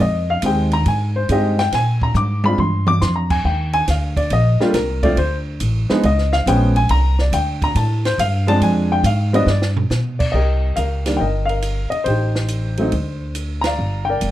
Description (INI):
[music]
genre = jazz piano trio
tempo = 139 BPM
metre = 4/4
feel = swing 68% on 8ths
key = C minor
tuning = A4 = 439 Hz
[part]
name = warm upright piano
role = melody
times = 0.0-14.3 s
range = Eb3 to D6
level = -19 LUFS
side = left 1 dB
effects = none
[part]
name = upright bass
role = bass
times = 0.0-14.3 s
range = F1 to B2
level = -18 LUFS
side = equal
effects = none
[part]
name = compact cocktail drum kit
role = drums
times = 0.4-14.3 s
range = crash cymbal, hi-hat, kick drum, ride cymbal, snare drum, toms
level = -26 LUFS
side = right 2 dB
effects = none
[sound]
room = light reverb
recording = dark, warm production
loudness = -16 LUFS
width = side -13 dB against mid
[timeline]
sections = 0.0-10.3 A section; 10.3-14.3 B section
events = upright piano solo 0.0-10.3; drum fill 2.2-3.0, 9.5-9.9; band accent 13.6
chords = 0.0 Fm9; 1.7 Bb7; 3.4 Ebmaj9; 5.2 D5; 6.0 Db7; 6.9 Csus2; 7.8 G9sus4; 8.6 Dm7b5; 9.5 G; 10.3 Cm7; 12.1 Am7b5; 12.9 C7sus2/D; 13.8 Gm7